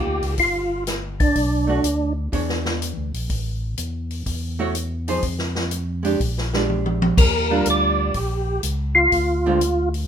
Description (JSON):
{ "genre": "soul jazz organ trio", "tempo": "124 BPM", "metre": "4/4", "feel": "swing 68% on 8ths", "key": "unclear", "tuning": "A4 = 440 Hz", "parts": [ { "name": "percussive tonewheel organ", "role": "melody", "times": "0.0-2.1, 7.2-9.9 s", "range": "D4 to D5", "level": "-19 LUFS", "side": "right 1 dB", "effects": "slow rotary speaker, chorus vibrato" }, { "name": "archtop guitar, miked and amplified", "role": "accompaniment", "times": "0.0-9.6 s", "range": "D3 to C#5", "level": "-24 LUFS", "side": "right 2 dB", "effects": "none" }, { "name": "tonewheel organ", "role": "bass", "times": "0.1-10.1 s", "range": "G1 to F2", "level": "-25 LUFS", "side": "equal", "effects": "overdrive, chorus vibrato, slow rotary speaker" }, { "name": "swinging big-band drum kit", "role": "drums", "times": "0.2-10.0 s", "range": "crash cymbal, hi-hat, kick drum, snare drum, toms", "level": "-24 LUFS", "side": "left 1 dB", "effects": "none" } ], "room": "moderate studio reverb, RT60 0.8 s", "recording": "minimal, uncompressed stereo recording", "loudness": "-19 LUFS", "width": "side -8 dB against mid", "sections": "0.0-10.1 A section", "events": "drum fill 6.7-7.2", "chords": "0.0 Cm11 (rootless); 1.4 Bm7; 2.3 E6; 3.3 A5; 5.2 Fm; 6.2 Bb6; 7.2 Ebmaj9; 9.1 Dm7b5" }